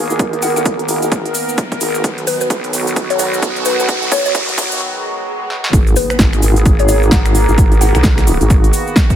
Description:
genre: bass house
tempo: 130 BPM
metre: 4/4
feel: swing 60% on 16ths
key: G# minor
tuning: A4 = 444 Hz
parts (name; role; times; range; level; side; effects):
- sweeping resonant pad; sustained chords; 0.0-9.2 s; D#3 to A#4; -23 LUFS; left 1 dB; chorus, sidechain pumping
- vowel-sweep wobble bass; bass; 0.0-8.7 s; G#1 to D#2; -16 LUFS; equal; chorus, tube saturation, sidechain pumping, high-pass filter
- riser, swell and impact; sound effects; 1.1-7.6 s; none; -24 LUFS; right 1 dB; none
- warbly tape-like pad; texture; 0.0-9.2 s; F#4 to A#5; -23 LUFS; right 4 dB; chorus, built-in reverb, sidechain pumping
- tube shaker; percussion; 0.1-9.2 s; none; -25 LUFS; left 3 dB; none
- big-room dance drum kit; drums; 0.2-9.2 s; finger snaps, hi-hat, snare drum; -20 LUFS; right 1 dB; overdrive, high-pass filter on hats, high-pass filter on snare, high-pass filter on room
- electronic kick drum; drums; 0.2-9.2 s; none; -14 LUFS; equal; overdrive, high-pass filter on kick, high-pass filter on room
- mallet-like synth pluck; melody; 0.4-8.0 s; B4 to F#5; -21 LUFS; left 3 dB; chorus, phaser, dub echo
room: light reverb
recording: high-pass filter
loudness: -12 LUFS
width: side -10 dB against mid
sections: 0.0-5.7 A section; 5.7-9.2 B section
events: build-up 0.0-5.7; filter sweep 0.0-5.7; riser 1.1-4.8; drum fill 2.0-4.8, 5.5; break 4.8-5.7; swell 4.8-5.7; drop 5.7-9.2; impact 5.7-7.6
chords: 0.0 G#madd9; 2.0 B; 5.7 G#madd9

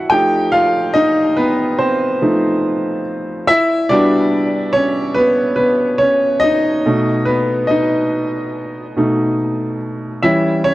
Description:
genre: hip hop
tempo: 71 BPM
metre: 4/4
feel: swing 64% on 16ths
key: unclear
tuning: A4 = 440 Hz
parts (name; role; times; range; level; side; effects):
- clear upright piano; solo; 0.0-10.7 s; B2 to G5; -13 LUFS; equal; cassette tape
room: moderate plate reverb, RT60 2.7 s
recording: cassette tape, faint mains hum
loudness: -13 LUFS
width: side -17 dB against mid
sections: 0.0-10.7 A section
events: upright piano solo 0.0-10.7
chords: 0.1 F9; 3.5 Gmaj7; 6.8 B7; 10.2 Em6

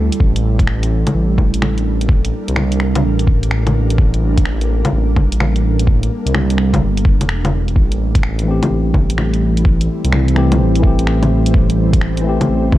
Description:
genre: future garage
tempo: 127 BPM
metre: 4/4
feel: swing 66% on 16ths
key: unclear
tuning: A4 = 440 Hz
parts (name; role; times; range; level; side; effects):
- ethereal airy pad; sustained chords; 0.0-12.8 s; G3 to C5; -22 LUFS; right 3 dB; ensemble chorus, built-in reverb, sidechain pumping
- dark detuned saw bass; bass; 0.0-12.8 s; E1 to D2; -16 LUFS; equal; sidechain pumping
- garage drum kit; drums; 0.1-12.8 s; bongos, finger snaps, hi-hat; -20 LUFS; left 1 dB; none
- electronic kick drum; drums; 0.2-12.8 s; none; -14 LUFS; equal; overdrive
- tine electric piano; accompaniment; 8.4-12.8 s; E3 to G4; -18 LUFS; left 2 dB; sidechain pumping, analog delay
room: light reverb, digital ambience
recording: cassette tape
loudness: -12 LUFS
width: side -15 dB against mid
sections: 0.0-12.8 A section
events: none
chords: 0.2 Gmadd9/A; 7.8 Am7

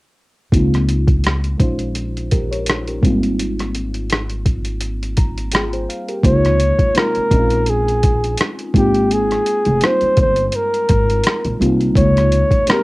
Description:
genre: R&B, neo-soul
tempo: 84 BPM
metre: 4/4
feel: swing 55% on 16ths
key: Bb dorian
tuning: A4 = 440 Hz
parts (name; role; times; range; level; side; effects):
- mellow FM electric piano; accompaniment; 0.5-12.8 s; C3 to Bb5; -21 LUFS; equal; chorus, phaser, cassette tape
- upright bass; bass; 0.5-12.5 s; F1 to Db2; -20 LUFS; equal; none
- boom bap sampler-style drum kit; drums; 0.5-12.8 s; hi-hat, kick drum, rim click; -17 LUFS; equal; none
- breathy flugelhorn; melody; 6.3-12.8 s; G4 to Db5; -17 LUFS; equal; cassette tape
room: light reverb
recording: home recording on cassette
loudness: -14 LUFS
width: side -21 dB against mid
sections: 0.5-6.2 A section; 6.2-12.8 B section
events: FM electric piano fill 4.8-6.2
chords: 0.5 Db69; 1.6 Bbm7; 3.0 Abmaj9; 6.2 Bbm7; 8.7 Abmaj9; 12.0 Db69

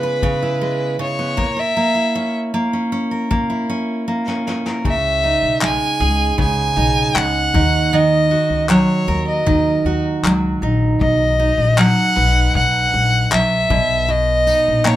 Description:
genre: acoustic pop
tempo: 78 BPM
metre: 4/4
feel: straight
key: unclear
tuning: A4 = 440 Hz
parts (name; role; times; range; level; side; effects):
- warm violin; melody; 0.0-15.0 s; B4 to G#5; -18 LUFS; equal; none
- picked steel-string acoustic guitar; accompaniment; 0.0-15.0 s; B2 to B4; -19 LUFS; right 2 dB; none
- vintage brush drum kit; drums; 0.2-15.0 s; handclaps, kick drum, snare drum, tambourine; -22 LUFS; left 3 dB; none
- upright bass; bass; 4.9-15.0 s; A#1 to D#2; -20 LUFS; left 1 dB; none
room: light reverb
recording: minimal, uncompressed stereo recording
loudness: -15 LUFS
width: side -13 dB against mid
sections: 0.0-4.9 A section; 4.9-15.0 B section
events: drum fill 4.1-4.9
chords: 0.0 C#m7; 1.4 A#dim; 4.9 C#madd9; 7.5 D#m; 11.0 B; 13.7 G#madd9 (rootless)

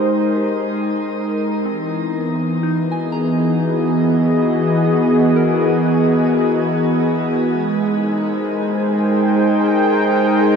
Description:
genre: ambient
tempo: 62 BPM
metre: 3/4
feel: straight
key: unclear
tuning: A4 = 440 Hz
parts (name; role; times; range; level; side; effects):
- warm analog pad; sustained chords; 0.0-10.6 s; E3 to G5; -15 LUFS; equal; chorus
- soft synth bell; arpeggios; 0.0-10.6 s; C4 to Bb5; -31 LUFS; equal; chorus, phaser, diffuse ambient delay
- wind-like tuned noise texture; texture; 8.1-10.6 s; Ab4; -24 LUFS; equal; built-in reverb
room: wet shimmer reverb, RT60 9.1 s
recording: dark, warm production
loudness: -15 LUFS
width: side -6 dB against mid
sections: 0.0-10.6 A section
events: fade-in on synth bell 0.0-10.6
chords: 0.0 Abmaj7; 1.7 Emaj7; 7.5 Abmaj7

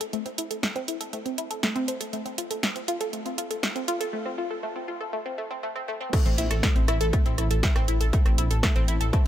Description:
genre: melodic techno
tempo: 120 BPM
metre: 4/4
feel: straight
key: A phrygian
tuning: A4 = 439 Hz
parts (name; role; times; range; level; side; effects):
- analog pluck; arpeggios; 0.0-9.2 s; A3 to A5; -29 LUFS; equal; chorus, phaser, sidechain pumping, ping-pong delay
- techno drum kit; drums; 0.0-9.2 s; crash cymbal, hi-hat, rim click, snare drum; -30 LUFS; right 1 dB; none
- electronic kick drum; drums; 6.1-9.2 s; none; -22 LUFS; equal; none
- dark detuned saw bass; bass; 6.3-9.1 s; A1 to Bb1; -26 LUFS; equal; tube saturation, sidechain pumping
room: light reverb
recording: high-pass filter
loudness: -24 LUFS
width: side -12 dB against mid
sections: 0.0-6.1 A section; 6.1-9.3 B section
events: build-up 0.0-6.1; filter sweep on synth arpeggio sound 0.0-6.1; filter sweep 0.0-6.1; break 4.1-6.1; drop 6.1-9.3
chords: 0.0 Am; 2.1 F; 6.1 Am

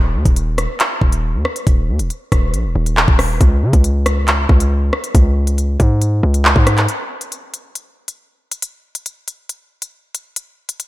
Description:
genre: hip hop, drill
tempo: 138 BPM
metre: 4/4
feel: half-time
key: unclear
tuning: A4 = 443 Hz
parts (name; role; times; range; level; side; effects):
- hard-hitting 808-style bass; bass; 0.0-6.9 s; Eb1 to Db3; -15 LUFS; equal; none
- drill drum kit; drums; 0.3-10.9 s; handclaps, hi-hat, kick drum, rim click; -15 LUFS; equal; none
room: light reverb, digital ambience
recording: none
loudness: -13 LUFS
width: side -17 dB against mid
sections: 0.0-6.9 A section; 6.9-10.9 B section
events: none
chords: none

